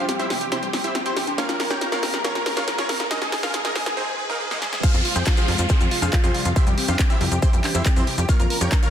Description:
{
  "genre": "uplifting trance",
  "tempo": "139 BPM",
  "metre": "4/4",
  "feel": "straight",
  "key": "F minor",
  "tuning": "A4 = 443 Hz",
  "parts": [
    { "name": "supersaw stab", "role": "melody", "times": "0.0-8.9 s", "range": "Ab3 to G5", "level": "-26 LUFS", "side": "right 1 dB", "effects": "vintage 12-bit sampler grit, sidechain pumping, low-pass filter, dub echo" },
    { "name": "plucky unison lead", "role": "second line", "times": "0.0-8.9 s", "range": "F5 to G6", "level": "-32 LUFS", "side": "equal", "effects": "ensemble chorus, sidechain pumping, digital delay" },
    { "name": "lush unison pad", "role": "sustained chords", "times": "0.0-8.9 s", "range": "F2 to Bb4", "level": "-34 LUFS", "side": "equal", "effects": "chorus, sidechain pumping" },
    { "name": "riser and downlifter", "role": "sound effects", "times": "1.0-8.3 s", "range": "none", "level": "-32 LUFS", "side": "equal", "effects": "none" },
    { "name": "analog pluck", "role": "arpeggios", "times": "0.1-8.9 s", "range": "C3 to Bb4", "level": "-33 LUFS", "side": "left 4 dB", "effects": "chorus, sidechain pumping, digital delay" },
    { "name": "punchy analog drum machine", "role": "drums", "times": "0.1-8.9 s", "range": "congas, crash cymbal, handclaps, hi-hat, snare drum", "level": "-26 LUFS", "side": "equal", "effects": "sidechain pumping on hats, sidechain pumping on perc, sidechain pumping on cymbals" },
    { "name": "electronic kick drum", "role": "drums", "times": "4.8-8.8 s", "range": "none", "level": "-19 LUFS", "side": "equal", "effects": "none" },
    { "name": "maracas", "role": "percussion", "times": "4.8-8.9 s", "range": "none", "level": "-34 LUFS", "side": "left 7 dB", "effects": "none" },
    { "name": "tight sequencer bass", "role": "bass", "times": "4.9-8.7 s", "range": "F2", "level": "-23 LUFS", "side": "equal", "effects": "sidechain pumping" }
  ],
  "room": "moderate lush hall reverb, RT60 2.5 s",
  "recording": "dense, heavily limited modern master, high-pass filter",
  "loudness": "-19 LUFS",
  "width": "side -9 dB against mid",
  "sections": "0.0-4.8 A section; 4.8-8.9 B section",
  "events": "build-up 0.0-4.8; drum fill 0.0-4.0, 4.5-4.8; filter sweep on synth pluck 0.0-4.8; drop 4.8-8.9",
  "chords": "0.0 C/F; 1.4 Bbm/F; 3.1 Absus2/F; 4.8 Fm; 6.6 C/F; 8.3 Bbm/F"
}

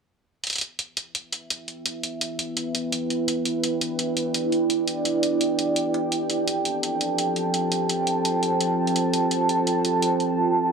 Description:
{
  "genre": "half-time drum and bass",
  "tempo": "169 BPM",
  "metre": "4/4",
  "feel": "half-time",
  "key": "E phrygian",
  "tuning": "A4 = 442 Hz",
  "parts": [
    { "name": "deep dark ambient pad", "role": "sustained chords", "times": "1.8-10.7 s", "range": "E4 to A5", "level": "-22 LUFS", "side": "right 2 dB", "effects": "chorus, built-in reverb" },
    { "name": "electronic hi-hat", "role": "drums", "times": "0.4-10.3 s", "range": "none", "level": "-27 LUFS", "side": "equal", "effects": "none" }
  ],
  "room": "wet lush hall reverb, RT60 1.9 s, digital ambience",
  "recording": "heavily compressed radio sound",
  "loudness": "-22 LUFS",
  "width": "side -5 dB against mid",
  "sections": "0.4-10.7 A section",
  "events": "none",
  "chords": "0.4 Em; 6.1 F"
}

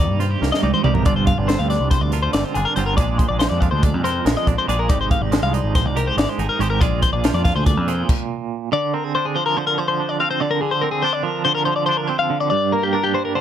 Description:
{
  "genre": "math rock and midwest emo",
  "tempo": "283 BPM (eighths)",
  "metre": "9/8",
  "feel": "straight",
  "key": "unclear",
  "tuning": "A4 = 439 Hz",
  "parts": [
    { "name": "twangy electric guitar", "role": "accompaniment", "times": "0.0-13.4 s", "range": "F2 to Bb4", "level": "-24 LUFS", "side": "right 11 dB", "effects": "tremolo" },
    { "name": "twelve-string electric guitar", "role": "arpeggios", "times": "0.0-13.4 s", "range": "G4 to F5", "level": "-21 LUFS", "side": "left 6 dB", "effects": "none" },
    { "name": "growling picked electric bass", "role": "bass", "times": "0.0-8.0 s", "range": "G1 to G2", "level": "-21 LUFS", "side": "equal", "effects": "overdrive" },
    { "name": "crisp fusion drum kit", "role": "drums", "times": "0.2-8.2 s", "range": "crash cymbal, hi-hat, kick drum, snare drum, toms", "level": "-20 LUFS", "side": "equal", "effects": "none" }
  ],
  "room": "little or no reverb",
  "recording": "dark, warm production",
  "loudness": "-17 LUFS",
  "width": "side -10 dB against mid",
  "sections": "0.0-8.7 A section; 8.7-13.4 B section",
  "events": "drum fill 0.4-1.1; stop 8.1-8.7",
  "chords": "0.0 Cm7; 1.1 G7sus4; 3.0 Bb7; 4.9 Fm9/Ab; 6.8 Bb9; 12.5 Gm"
}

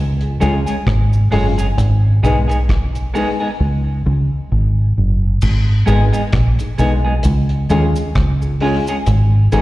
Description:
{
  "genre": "roots reggae",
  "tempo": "66 BPM",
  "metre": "4/4",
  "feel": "swing 57% on 16ths",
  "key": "G# dorian",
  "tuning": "A4 = 439 Hz",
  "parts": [
    { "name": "deep dub fingered electric bass", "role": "bass", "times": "0.0-9.6 s", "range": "F#1 to D#2", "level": "-14 LUFS", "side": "equal", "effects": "none" },
    { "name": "dark upright piano", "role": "stabs", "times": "0.2-9.6 s", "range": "G#3 to G#4", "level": "-23 LUFS", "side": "left 3 dB", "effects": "slapback echo" },
    { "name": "deep reggae drum kit", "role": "drums", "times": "0.2-9.6 s", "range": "crash cymbal, hi-hat, kick drum, rim click", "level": "-22 LUFS", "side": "equal", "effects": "none" },
    { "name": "semi-hollow electric guitar", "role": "accompaniment", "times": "0.4-9.6 s", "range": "G#3 to G#4", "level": "-22 LUFS", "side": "right 1 dB", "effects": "tape echo, slapback echo" },
    { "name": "cabasa", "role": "percussion", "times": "0.4-9.6 s", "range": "none", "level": "-41 LUFS", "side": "right 4 dB", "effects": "slapback echo" }
  ],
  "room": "small room reverb",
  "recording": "live gig heard through the venue's PA, cassette tape, recital hall reverb",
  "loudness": "-13 LUFS",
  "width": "side -17 dB against mid",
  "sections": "0.0-5.4 A section; 5.4-9.6 B section",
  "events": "drums muted 3.6-5.4",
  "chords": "0.0 C#; 1.8 G#m; 3.6 C#5; 5.4 G#m; 7.2 C#; 9.1 G#m"
}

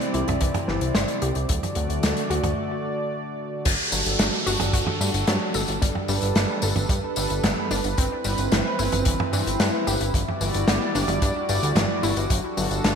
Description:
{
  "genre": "synthwave",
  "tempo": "111 BPM",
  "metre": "4/4",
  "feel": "straight",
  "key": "unclear",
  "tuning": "A4 = 440 Hz",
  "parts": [
    { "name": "warm analog pad", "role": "sustained chords", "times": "0.0-13.0 s", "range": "C3 to D5", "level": "-27 LUFS", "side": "right 1 dB", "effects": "chorus, sidechain pumping" },
    { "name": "loose indie drum kit", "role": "drums", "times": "0.0-13.0 s", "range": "crash cymbal, hi-hat, snare drum, tambourine, toms", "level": "-25 LUFS", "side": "equal", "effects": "gated reverb" },
    { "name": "wide unison pluck", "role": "arpeggios", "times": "0.1-13.0 s", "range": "E3 to C5", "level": "-31 LUFS", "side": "left 3 dB", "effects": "cassette tape, ping-pong delay" },
    { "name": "fat analog bass", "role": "bass", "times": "0.1-12.9 s", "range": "G1 to G2", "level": "-26 LUFS", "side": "equal", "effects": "none" },
    { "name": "kick drum", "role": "drums", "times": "0.4-12.4 s", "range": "none", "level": "-24 LUFS", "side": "equal", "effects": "none" },
    { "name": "downlifter", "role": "sound effects", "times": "3.7-8.0 s", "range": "none", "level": "-29 LUFS", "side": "right 2 dB", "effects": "none" }
  ],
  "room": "moderate lush hall reverb, RT60 1.6 s, small room reverb",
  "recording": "bright 1980s-style digital production",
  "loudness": "-21 LUFS",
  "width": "side -7 dB against mid",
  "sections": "0.0-3.7 A section; 3.7-13.0 B section",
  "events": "break 2.6-3.7",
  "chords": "0.0 Cadd9; 1.5 D; 3.7 D/G; 5.8 Gadd9; 8.0 Cmaj7/G; 10.1 Em7/G; 12.3 D/G"
}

